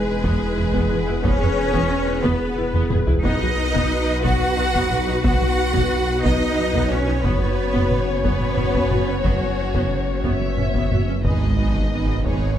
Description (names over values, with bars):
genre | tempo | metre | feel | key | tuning
cinematic, hybrid orchestral and electronic film score | 60 BPM (dotted quarters) | 6/8 | straight | unclear | A4 = 441 Hz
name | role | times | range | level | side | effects
bright symphonic violin section | second line | 0.0-12.6 s | F#4 to F#5 | -28 LUFS | equal | none
warm symphonic viola section | accompaniment | 0.0-12.6 s | B3 to C#5 | -27 LUFS | equal | none
dark French horn section | sustained chords | 0.0-10.9 s | F#4 to C#5 | -28 LUFS | left 5 dB | none
warbly tape-like pad | sustained chords | 0.0-12.6 s | B3 to B4 | -29 LUFS | left 3 dB | chorus, built-in reverb
rich symphonic cello section | bass | 0.0-12.6 s | G#2 to F#4 | -26 LUFS | right 2 dB | none
swelling detuned saw bass | bass | 0.0-12.6 s | E1 to B1 | -26 LUFS | equal | none
rich symphonic double bass section | bass | 0.2-12.6 s | F#1 to E2 | -26 LUFS | right 2 dB | none
taiko ensemble | drums | 0.2-12.6 s | none | -25 LUFS | equal | none
rich symphonic violin section | melody | 10.2-12.6 s | C#5 to E5 | -31 LUFS | left 3 dB | none
sub drop | sound effects | 11.2-12.6 s | none | -25 LUFS | equal | none
room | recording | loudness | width
light reverb | none | -18 LUFS | side -10 dB against mid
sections
0.0-11.2 A section; 11.2-12.6 B section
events
drum fill 2.7-3.2; impact 11.2-12.6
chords
0.0 E; 3.2 B; 7.2 F#sus4; 11.2 G#m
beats
0.24 | 1.24 2.24 | 3.24 4.24 | 5.24 6.24 | 7.24 8.24 | 9.24 10.24 | 11.24 12.24